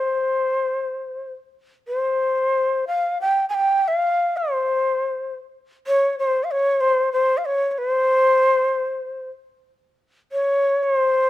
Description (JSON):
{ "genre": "japanese traditional, Japanese chamber music", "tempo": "60 BPM", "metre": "2/4", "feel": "rubato", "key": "unclear", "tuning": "A4 = 440 Hz", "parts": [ { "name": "breathy mellow shakuhachi", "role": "solo", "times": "0.0-11.3 s", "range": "C5 to Ab5", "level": "-18 LUFS", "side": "left 1 dB", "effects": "none" } ], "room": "little or no reverb", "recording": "close, detailed microphones", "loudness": "-18 LUFS", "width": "side -14 dB against mid", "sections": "0.0-9.8 A section; 9.8-11.3 B section", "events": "none", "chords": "none" }